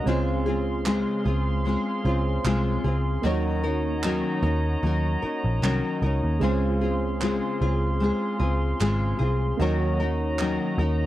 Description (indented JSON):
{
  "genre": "indie pop, bedroom pop",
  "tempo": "76 BPM",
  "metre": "4/4",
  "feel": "swing 55% on 16ths",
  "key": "unclear",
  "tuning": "A4 = 435 Hz",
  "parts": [
    { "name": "nylon-string guitar", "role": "accompaniment", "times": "0.0-11.1 s", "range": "Db3 to Bb4", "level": "-27 LUFS", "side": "left 3 dB", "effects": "analog chorus, vibrato effect" },
    { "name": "soft electric-piano-like synth keys", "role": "accompaniment", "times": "0.0-11.1 s", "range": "Ab3 to Db5", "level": "-31 LUFS", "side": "right 4 dB", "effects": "chorus, phaser" },
    { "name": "warm brass ensemble", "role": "sustained chords", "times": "0.0-11.1 s", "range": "Gb4 to C6", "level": "-34 LUFS", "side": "right 1 dB", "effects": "none" },
    { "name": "vintage muted picked electric bass", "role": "bass", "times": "0.1-11.1 s", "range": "Ab1 to Eb2", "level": "-25 LUFS", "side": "right 1 dB", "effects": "none" },
    { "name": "group handclap", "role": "percussion", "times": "0.9-10.6 s", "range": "none", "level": "-35 LUFS", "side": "right 4 dB", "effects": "none" }
  ],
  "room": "little or no reverb",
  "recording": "dry, close 1970s-style studio recording",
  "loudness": "-22 LUFS",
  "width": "side -14 dB against mid",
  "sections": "0.0-11.1 A section",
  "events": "none",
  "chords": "0.1 Dbmaj7; 3.2 Ebm7; 6.4 Dbmaj7; 9.6 Ebm7",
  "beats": "| 0.07 0.86 1.66 2.45 | 3.25 4.04 4.84 5.63 | 6.42 7.22 8.01 8.81 | 9.60 10.40"
}